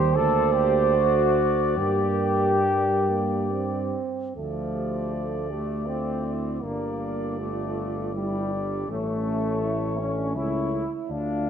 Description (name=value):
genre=classical, hymn-like piece for brass band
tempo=68-85 BPM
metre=3/4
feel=rubato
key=G minor, D minor from 4.4 s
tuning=A4 = 440 Hz
part: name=warm flugelhorn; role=melody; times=0.0-11.5 s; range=C5 to F5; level=-33 LUFS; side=left 7 dB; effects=none
part: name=mellow French horn section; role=second line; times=0.0-11.5 s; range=C#4 to C5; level=-29 LUFS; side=right 9 dB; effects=none
part: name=bright trombone section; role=accompaniment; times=0.0-11.5 s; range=F3 to A4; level=-27 LUFS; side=left 3 dB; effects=none
part: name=mellow trombone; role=accompaniment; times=0.0-11.5 s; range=G3 to C4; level=-33 LUFS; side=right 4 dB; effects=none
part: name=mellow tuba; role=bass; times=0.0-11.5 s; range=G1 to G2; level=-29 LUFS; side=right 1 dB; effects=none
room=moderate scoring stage reverb, RT60 1.7 s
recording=none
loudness=-23 LUFS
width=side -8 dB against mid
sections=0.0-4.4 A section; 4.4-11.5 B section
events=none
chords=0.1 Gm/D; 0.9 D; 1.8 Gm; 4.4 Dm; 6.6 Gm; 8.9 A